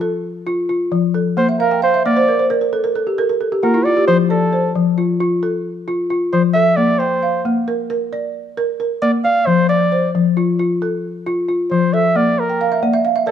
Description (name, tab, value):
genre	west african traditional, West African string and xylophone music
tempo	89 BPM (dotted quarters)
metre	12/8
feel	straight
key	F major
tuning	A4 = 440 Hz
part	balafon	arpeggios	0.0-13.3 s	F3 to G5	-16 LUFS	left 1 dB	none
part	warm flugelhorn	melody	1.4-13.3 s	A4 to F5	-17 LUFS	right 2 dB	none
room	moderate recital hall reverb, RT60 1.6 s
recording	dark, warm production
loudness	-14 LUFS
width	side -9 dB against mid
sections	0.0-13.3 A section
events	flugelhorn solo 0.0-13.3; balafon fill 1.5-4.1, 12.5-13.3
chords	0.0 F; 1.4 Bb; 4.1 F; 6.8 Bb; 9.5 F; 12.2 Bbmaj7#11